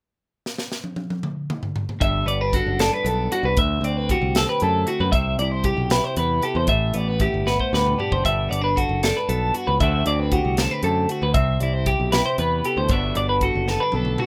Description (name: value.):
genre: math rock and midwest emo.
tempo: 77 BPM (dotted quarters).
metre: 6/8.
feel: straight.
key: G major.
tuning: A4 = 439 Hz.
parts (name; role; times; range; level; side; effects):
crisp fusion drum kit; drums; 0.5-14.3 s; hi-hat, kick drum, snare drum, toms; -28 LUFS; equal; none.
twelve-string electric guitar; accompaniment; 2.0-14.3 s; D2 to A4; -30 LUFS; equal; none.
twelve-string electric guitar; arpeggios; 2.0-14.3 s; F#4 to E5; -25 LUFS; equal; warbly pitch drift.
modern bright picked electric bass; bass; 2.0-14.2 s; F#1 to F#2; -26 LUFS; equal; none.
room: little or no reverb.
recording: rough home demo mix.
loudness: -22 LUFS.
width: mono.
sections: 0.4-2.0 A section; 2.0-14.3 B section.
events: drum fill 0.4-2.0, 7.5-8.2, 13.7-14.3.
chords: 0.4 N.C.; 2.0 Gmaj7; 3.6 D7; 5.1 Cmaj7; 6.7 Am11; 8.2 Gmaj7; 9.8 D7; 11.4 Cmaj7; 12.9 Gmaj7.